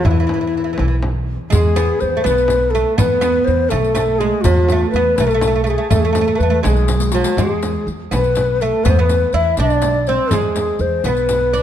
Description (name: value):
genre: Persian modal ensemble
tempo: 82 BPM (dotted quarters)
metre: 6/8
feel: straight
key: E dastgah homayun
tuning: A4 = 440 Hz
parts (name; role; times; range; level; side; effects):
- breathy mellow ney; melody; 0.0-11.6 s; E4 to E5; -18 LUFS; left 3 dB; none
- oud; second line; 0.0-11.6 s; E3 to E4; -21 LUFS; right 7 dB; none
- upright bass; bass; 0.0-11.6 s; B1 to E2; -18 LUFS; right 1 dB; none
- clear double bass; drone; 0.0-1.6 s; E2; -28 LUFS; left 2 dB; none
- frame drum; percussion; 0.0-11.4 s; none; -22 LUFS; left 1 dB; none
- riq; percussion; 1.5-11.6 s; none; -29 LUFS; left 8 dB; none
room: light reverb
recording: dark, warm production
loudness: -14 LUFS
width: side -10 dB against mid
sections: 0.0-1.5 A section; 1.5-11.6 B section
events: drum fill 6.9-7.4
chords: none